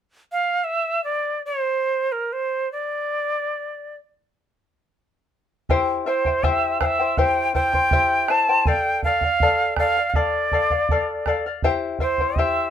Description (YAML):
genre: andean folk, Andean ensemble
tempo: 81 BPM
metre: 4/4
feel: straight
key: unclear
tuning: A4 = 441 Hz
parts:
  - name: bright quena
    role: melody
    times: 0.3-12.7 s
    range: Bb4 to A5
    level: -21 LUFS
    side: right 1 dB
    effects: none
  - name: charango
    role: accompaniment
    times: 5.7-12.7 s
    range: E4 to G5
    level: -23 LUFS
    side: left 4 dB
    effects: none
  - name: bombo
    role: percussion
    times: 5.7-12.5 s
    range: none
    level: -25 LUFS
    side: right 1 dB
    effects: none
room: light reverb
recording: minimal, uncompressed stereo recording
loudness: -19 LUFS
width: side -9 dB against mid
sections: 0.0-5.7 A section; 5.7-12.7 B section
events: none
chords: 0.0 N.C.; 5.7 C; 8.7 Dm; 11.6 C